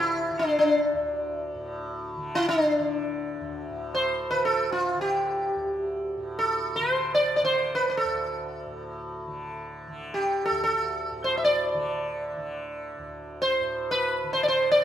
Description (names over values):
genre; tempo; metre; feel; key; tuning
indian classical, Hindustani; free time; none; none; D raga bhimpalasi; A4 = 441 Hz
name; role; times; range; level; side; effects
sitar; melody; 0.0-14.8 s; D4 to E5; -24 LUFS; equal; none
tanpura; drone; 0.0-14.8 s; D2 to D3; -36 LUFS; equal; none
room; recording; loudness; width
moderate recital hall reverb, RT60 1.6 s; minimal, uncompressed stereo recording; -24 LUFS; side -10 dB against mid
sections
0.0-3.7 A section; 3.7-14.8 A section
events
none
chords
none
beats
free time